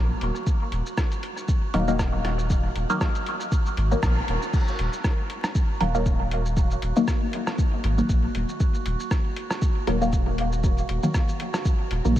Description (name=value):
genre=dub techno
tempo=118 BPM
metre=4/4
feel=swing 55% on 16ths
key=Eb minor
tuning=A4 = 441 Hz
part: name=warm sub bass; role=bass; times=0.0-12.2 s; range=Eb1 to Bb1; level=-25 LUFS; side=equal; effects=sidechain pumping
part: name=drifting glass-harmonics texture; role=texture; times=0.0-12.2 s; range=Gb4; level=-37 LUFS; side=right 7 dB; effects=chorus, built-in reverb, sidechain pumping
part: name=lo-fi sampler-style drum kit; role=drums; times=0.2-12.2 s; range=crash cymbal, hi-hat, rim click, shaker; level=-33 LUFS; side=equal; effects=dub echo
part: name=electronic kick drum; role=drums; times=0.5-12.2 s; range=none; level=-23 LUFS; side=equal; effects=none
part: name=filtered dub chord stab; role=stabs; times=1.7-12.1 s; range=Eb3 to Bb3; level=-28 LUFS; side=left 1 dB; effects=phaser, sidechain pumping, dub echo
room=light reverb, digital ambience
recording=vinyl crackle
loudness=-22 LUFS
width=side -13 dB against mid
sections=0.0-4.5 A section; 4.5-12.2 A section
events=band accent 4.0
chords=0.0 Ebm